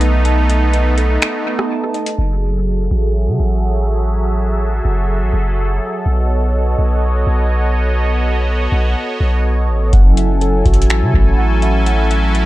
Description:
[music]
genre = hip hop, atmospheric cloud-rap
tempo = 124 BPM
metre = 4/4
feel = half-time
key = F# dorian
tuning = A4 = 438 Hz
[part]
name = sweeping resonant pad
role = sustained chords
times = 0.0-12.5 s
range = F#3 to G#5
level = -19 LUFS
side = right 1 dB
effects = chorus, sidechain pumping, low-pass filter
[part]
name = muted felt-like synth keys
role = arpeggios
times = 0.0-2.2, 9.9-12.5 s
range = A3 to A5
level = -23 LUFS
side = right 2 dB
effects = chorus, low-pass filter, dub echo
[part]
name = long sustained 808-style bass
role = bass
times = 0.0-12.5 s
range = F#1 to C#3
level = -15 LUFS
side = equal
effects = none
[part]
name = booming analog drum machine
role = drums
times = 0.0-2.2, 9.9-12.5 s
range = finger snaps, hi-hat, kick drum, rim click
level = -15 LUFS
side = equal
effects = dub echo
[sound]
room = little or no reverb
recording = echo-heavy mix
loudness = -13 LUFS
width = side -17 dB against mid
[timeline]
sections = 0.0-2.2 A section; 2.2-9.9 B section; 9.9-12.5 C section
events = break 1.2-2.2; filter sweep on analog synth pad 2.2-9.9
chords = 0.0 B7; 2.2 F#m7; 6.1 B7; 9.9 F#m7

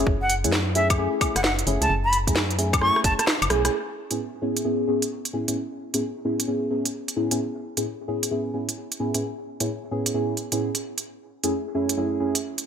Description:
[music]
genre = UK garage, two-step garage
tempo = 131 BPM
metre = 4/4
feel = swing 65% on 16ths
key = unclear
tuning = A4 = 440 Hz
[part]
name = deep mellow chord stab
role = stabs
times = 0.0-12.4 s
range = F#2 to G#4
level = -26 LUFS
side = equal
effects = chorus, phaser, dub echo
[part]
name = organ-like FM bass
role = bass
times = 0.0-3.7 s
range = F#1 to F#2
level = -26 LUFS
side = equal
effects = tube saturation, sidechain pumping
[part]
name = electronic kick drum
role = drums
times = 0.1-3.2 s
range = none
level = -26 LUFS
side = equal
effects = none
[part]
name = bright silver concert flute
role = melody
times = 0.2-3.2 s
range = E5 to C#6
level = -25 LUFS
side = equal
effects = dub echo
[part]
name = garage drum kit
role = drums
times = 0.3-12.6 s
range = hi-hat, rim click, snare drum, woodblock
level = -25 LUFS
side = right 1 dB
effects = none
[sound]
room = light reverb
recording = none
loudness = -22 LUFS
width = side -8 dB against mid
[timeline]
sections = 0.0-3.7 A section; 3.7-12.7 B section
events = drum fill 2.8-3.7; kick drops out 3.3-3.7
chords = 0.0 F#m9; 3.7 Amaj7; 10.8 F#m9

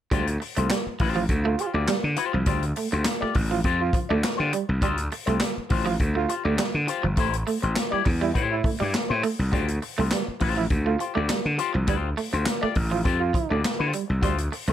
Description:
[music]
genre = funk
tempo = 102 BPM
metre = 4/4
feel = straight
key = D minor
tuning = A4 = 440 Hz
[part]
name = electric guitar with an envelope filter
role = accompaniment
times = 0.1-14.7 s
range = E4 to D5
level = -30 LUFS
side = left 9 dB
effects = wide subtle chorus, plate reverb
[part]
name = electric guitar at the edge of break-up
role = riff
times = 0.1-14.7 s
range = F3 to A3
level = -29 LUFS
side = right 6 dB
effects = tremolo
[part]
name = gritty slap bass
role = bass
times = 0.1-14.7 s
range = G1 to D3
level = -25 LUFS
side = equal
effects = overdrive
[part]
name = swinging big-band drum kit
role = drums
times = 0.1-14.7 s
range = handclaps, hi-hat, kick drum, snare drum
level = -27 LUFS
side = equal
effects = none
[part]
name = breathy trombone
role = second line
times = 1.1-13.6 s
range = E4 to F4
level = -30 LUFS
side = right 8 dB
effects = plate reverb
[sound]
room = light reverb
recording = none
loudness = -22 LUFS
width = side -11 dB against mid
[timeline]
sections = 0.1-14.7 A section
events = none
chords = 0.1 Dm7; 7.2 Am7; 9.5 Dm7

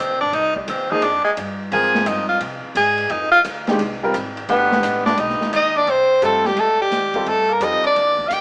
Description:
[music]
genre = modal jazz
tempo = 173 BPM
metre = 4/4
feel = swing 65% on 8ths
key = F dorian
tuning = A4 = 440 Hz
[part]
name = edgy tenor saxophone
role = second line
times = 0.0-8.4 s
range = G3 to Ab4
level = -21 LUFS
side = equal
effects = none
[part]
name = upright bass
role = bass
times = 0.0-8.4 s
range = F1 to C3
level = -36 LUFS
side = equal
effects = none
[part]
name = open jazz drum kit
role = drums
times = 0.3-8.4 s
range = hi-hat, kick drum, ride cymbal, snare drum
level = -29 LUFS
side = equal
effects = none
[part]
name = bright grand piano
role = accompaniment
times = 0.9-7.8 s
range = Eb3 to B4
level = -27 LUFS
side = equal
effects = none
[part]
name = edgy soprano saxophone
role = melody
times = 5.6-8.4 s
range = G4 to G5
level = -19 LUFS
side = equal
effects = none
[sound]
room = moderate stone room reverb, RT60 1.0 s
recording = band playing live in one room, small speaker sound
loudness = -19 LUFS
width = mono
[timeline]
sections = 0.0-5.9 A section; 5.9-8.4 B section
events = tenor saxophone solo 0.0-5.9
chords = 0.0 Fm9; 4.5 G(b13); 5.9 Cm69

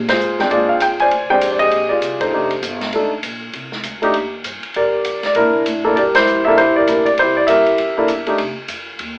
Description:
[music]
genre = jazz piano trio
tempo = 198 BPM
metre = 4/4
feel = swing 61% on 8ths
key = unclear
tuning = A4 = 439 Hz
[part]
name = upright bass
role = bass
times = 0.0-9.2 s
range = F1 to Bb2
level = -31 LUFS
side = equal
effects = none
[part]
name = warm concert grand piano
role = melody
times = 0.1-8.4 s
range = Ab3 to Ab5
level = -13 LUFS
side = equal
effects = none
[part]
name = open jazz drum kit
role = drums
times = 0.1-9.1 s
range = hi-hat, kick drum, ride cymbal, snare drum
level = -26 LUFS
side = equal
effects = none
[sound]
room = moderate large studio reverb, RT60 0.8 s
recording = band playing live in one room, AM radio sound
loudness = -13 LUFS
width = side -25 dB against mid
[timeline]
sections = 0.0-9.2 A section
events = band accent 0.0, 2.2, 6.1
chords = 0.0 Bb13; 2.3 F13; 4.8 C13; 8.4 F7(no3)

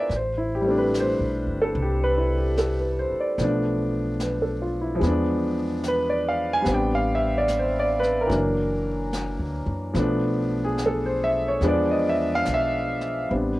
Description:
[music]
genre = jazz ballad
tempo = 73 BPM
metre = 4/4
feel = swing 66% on 8ths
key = A minor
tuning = A4 = 440 Hz
[part]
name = warm grand piano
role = accompaniment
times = 0.0-13.6 s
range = E3 to G#5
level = -22 LUFS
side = equal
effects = cassette tape
[part]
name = upright bass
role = bass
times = 0.1-13.6 s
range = F#1 to F#2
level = -28 LUFS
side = equal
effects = none
[part]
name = jazz brush drum kit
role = drums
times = 0.1-13.6 s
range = brushed snare drum, hi-hat, snare drum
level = -38 LUFS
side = equal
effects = cassette tape
[sound]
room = light reverb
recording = home recording on cassette, faint mains hum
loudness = -21 LUFS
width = side -18 dB against mid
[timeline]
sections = 0.0-13.3 A section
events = none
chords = 0.1 Am11; 3.4 Bm7b5; 5.0 E7b9; 6.7 Am11; 8.3 F#aug7; 10.0 Bm7b5; 11.6 E7b9

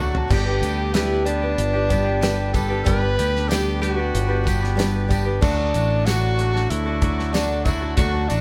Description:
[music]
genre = folk rock and heartland rock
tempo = 94 BPM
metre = 4/4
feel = straight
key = G major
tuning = A4 = 439 Hz
[part]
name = bright tenor saxophone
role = melody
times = 0.0-8.4 s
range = D4 to B4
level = -27 LUFS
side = equal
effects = none
[part]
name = picked twelve-string acoustic guitar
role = accompaniment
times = 0.0-8.4 s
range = D3 to B4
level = -29 LUFS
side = equal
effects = none
[part]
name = twangy electric guitar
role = riff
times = 0.0-8.4 s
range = G2 to G4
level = -32 LUFS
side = equal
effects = none
[part]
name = fingered electric bass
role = bass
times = 0.0-8.4 s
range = G1 to D2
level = -25 LUFS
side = equal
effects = none
[part]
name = damped 70s drum kit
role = drums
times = 0.1-8.4 s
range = crash cymbal, hi-hat, kick drum, snare drum, toms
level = -26 LUFS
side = equal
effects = none
[part]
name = tambourine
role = percussion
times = 0.3-8.4 s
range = none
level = -42 LUFS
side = equal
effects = none
[sound]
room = moderate stone room reverb, RT60 1.1 s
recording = band playing live in one room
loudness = -21 LUFS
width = mono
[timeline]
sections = 0.0-8.4 A section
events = drum fill 0.0-0.3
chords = 0.3 G; 5.4 D

